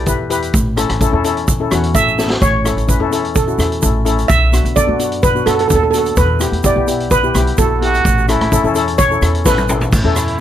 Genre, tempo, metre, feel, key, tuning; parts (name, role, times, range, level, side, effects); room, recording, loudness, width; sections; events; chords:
calypso; 128 BPM; 4/4; straight; A4 = 440 Hz
steel pan; melody; 0.0-9.7 s; A4 to E5; -17 LUFS; right 3 dB
upright bass; bass; 0.0-10.4 s; A1 to F#2; -18 LUFS; equal
steel pan; accompaniment; 0.1-10.3 s; B3 to B4; -19 LUFS; left 6 dB
street-band drum kit; drums; 0.1-10.4 s; crash cymbal, hi-hat, kick drum, rim click, snare drum, toms; -18 LUFS; equal
egg shaker; percussion; 0.1-10.3 s; -26 LUFS; right 6 dB
mellow trumpet; second line; 7.8-10.4 s; E4 to F#4; -19 LUFS; right 4 dB
little or no reverb; -12 LUFS; side -11 dB against mid
0.0-9.9 A section
steel pan solo 0.0-9.9; drum fill 2.2, 9.5-9.9
0.0 Em; 0.5 A; 4.3 Bm7; 6.2 Em; 8.0 A